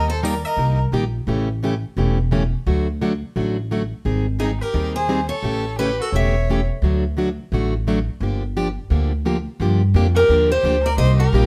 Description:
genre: acoustic string swing (jazz manouche).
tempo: 173 BPM.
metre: 4/4.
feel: swing 60% on 8ths.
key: G minor.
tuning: A4 = 439 Hz.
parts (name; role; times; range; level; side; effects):
picked steel-string acoustic guitar; melody; 0.0-0.8, 4.4-6.7, 10.2-11.5 s; Ab4 to E5; -24 LUFS; equal; none.
clear violin; second line; 0.0-0.8, 4.4-6.6, 10.2-11.5 s; Eb4 to C#5; -28 LUFS; equal; none.
picked plugged-in steel-string acoustic guitar; accompaniment; 0.0-11.5 s; C3 to Ab4; -25 LUFS; equal; none.
upright bass; bass; 0.0-11.5 s; E1 to G2; -22 LUFS; equal; none.
room: light reverb.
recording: dark, warm production.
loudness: -20 LUFS.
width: mono.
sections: 0.0-9.6 A section; 9.6-11.5 B section.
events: none.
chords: 0.0 Eb; 1.3 A7; 2.7 D; 4.0 Abmaj7; 5.4 A7; 6.8 D; 8.2 Gm7.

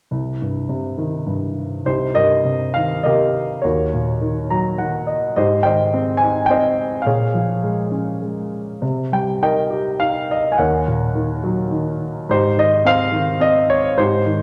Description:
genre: classical, lyrical solo piano.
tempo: 104 BPM.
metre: 3/4.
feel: uneven beats, rubato.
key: unclear.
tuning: A4 = 438 Hz.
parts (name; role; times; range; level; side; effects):
warm concert grand piano; solo; 0.1-14.4 s; C2 to Bb5; -19 LUFS; equal; none.
room: wet recital hall reverb, RT60 1.7 s.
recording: none.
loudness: -19 LUFS.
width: mono.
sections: 0.1-1.8 A section; 1.8-14.4 B section.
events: grand piano fill 4.2-5.4.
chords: 0.1 Cm; 1.8 Cm7; 3.6 Ebm7; 5.4 Abmaj7; 7.1 Bbm7; 8.8 Cm7; 10.6 Ebm7; 12.3 Abmaj7.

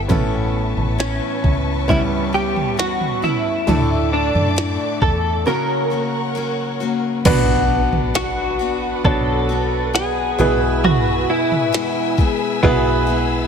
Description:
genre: pop ballad.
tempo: 67 BPM.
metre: 4/4.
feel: straight.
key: B minor.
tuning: A4 = 440 Hz.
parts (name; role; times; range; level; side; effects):
clear baby grand piano; accompaniment; 0.0-13.5 s; A2 to C#5; -22 LUFS; right 2 dB; none.
warm studio string section; sustained chords; 0.0-13.5 s; D4 to E6; -27 LUFS; left 1 dB; none.
picked steel-string acoustic guitar; arpeggios; 0.0-13.5 s; A2 to F#4; -26 LUFS; left 10 dB; none.
vintage muted fingered electric bass; bass; 0.0-13.5 s; A1 to F#2; -23 LUFS; equal; none.
minimal click drum kit; drums; 0.1-12.8 s; crash cymbal, kick drum, snare drum, toms; -20 LUFS; right 1 dB; none.
direct-recorded clean electric guitar; melody; 1.0-12.1 s; C#4 to A#4; -21 LUFS; equal; ensemble chorus.
impact; sound effects; 7.4-10.8 s; none; -28 LUFS; equal; none.
warm French horn section; second line; 12.2-13.5 s; E4 to G#4; -25 LUFS; left 8 dB; none.
room: light reverb, small room ambience.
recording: none.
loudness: -16 LUFS.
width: side -7 dB against mid.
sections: 0.0-7.3 A section; 7.3-13.5 B section.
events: break 5.5-7.3; impact 7.3-10.8.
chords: 0.1 Aadd9; 3.7 Dsus2; 5.5 F#; 7.3 Bm; 10.4 E/B.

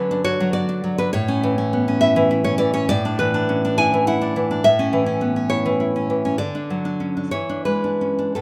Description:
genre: romantic piece for solo classical guitar.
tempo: 56-72 BPM (dotted quarters).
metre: 6/8.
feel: rubato.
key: A major.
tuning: A4 = 440 Hz.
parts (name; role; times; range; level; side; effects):
nylon-string guitar; solo; 0.0-8.4 s; A2 to G#5; -20 LUFS; equal; none.
room: moderate recital hall reverb, RT60 1.5 s.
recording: none.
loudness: -20 LUFS.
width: mono.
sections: 0.0-8.4 A section.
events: none.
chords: 0.0 D; 1.1 A; 2.9 E5/A; 4.6 A; 6.4 D; 7.3 E7.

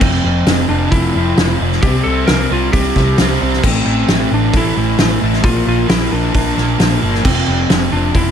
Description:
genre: rock, shoegaze and dream pop.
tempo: 133 BPM.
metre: 4/4.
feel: straight.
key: unclear.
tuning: A4 = 441 Hz.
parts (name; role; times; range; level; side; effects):
lightly driven lead guitar; melody; 0.0-8.3 s; C4 to Bb4; -20 LUFS; left 2 dB; digital delay.
fuzz guitar; riff; 0.0-8.3 s; F2 to C4; -16 LUFS; right 1 dB; distortion, wide subtle chorus.
vintage muted picked electric bass; bass; 0.0-8.3 s; F1 to C2; -18 LUFS; equal; none.
loose indie drum kit; drums; 0.0-8.3 s; crash cymbal, hi-hat, kick drum, snare drum; -16 LUFS; equal; none.
room: light reverb, small room reverb.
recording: none.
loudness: -12 LUFS.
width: side -8 dB against mid.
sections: 0.0-8.3 A section.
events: none.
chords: 0.0 F5; 1.8 C5; 3.6 Am; 5.4 Bb; 7.2 F5.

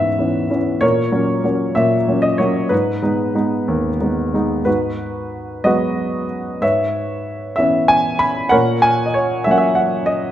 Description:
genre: classical, lyrical solo piano.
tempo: 63 BPM (dotted quarters).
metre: 6/8.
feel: rubato.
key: G# minor.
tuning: A4 = 440 Hz.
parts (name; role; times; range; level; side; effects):
dark grand piano; solo; 0.0-10.3 s; D#2 to B5; -15 LUFS; equal; none.
room: moderate scoring stage reverb, RT60 1.5 s.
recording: minimal, uncompressed stereo recording.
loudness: -15 LUFS.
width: side -11 dB against mid.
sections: 0.0-4.7 A section; 4.7-10.3 B section.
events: none.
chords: 0.0 C#m7/G#; 0.8 F#/A#; 2.7 G#m; 4.7 G#m7; 6.6 C#m7/G#; 8.5 F#/A#.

